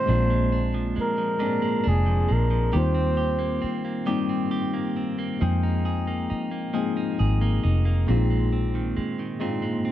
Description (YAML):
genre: R&B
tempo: 45 BPM (dotted quarters)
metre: 6/8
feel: straight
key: unclear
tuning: A4 = 441 Hz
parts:
  - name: breathy flugelhorn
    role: melody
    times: 0.0-3.8 s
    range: Ab4 to C5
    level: -27 LUFS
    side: equal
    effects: none
  - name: clean electric guitar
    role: second line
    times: 0.0-9.9 s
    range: Bb2 to Ab4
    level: -30 LUFS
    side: right 4 dB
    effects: none
  - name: tine electric piano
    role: accompaniment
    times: 0.0-9.9 s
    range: G3 to G5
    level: -28 LUFS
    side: left 3 dB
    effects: phaser
  - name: vintage muted fingered electric bass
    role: bass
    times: 0.1-9.0 s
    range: F1 to F2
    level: -22 LUFS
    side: equal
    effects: none
room: light reverb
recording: dark, warm production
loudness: -22 LUFS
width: side -12 dB against mid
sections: 0.0-9.9 A section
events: none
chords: 0.1 Bb7; 2.7 Eb6; 5.4 Fm11; 8.1 Bb9sus4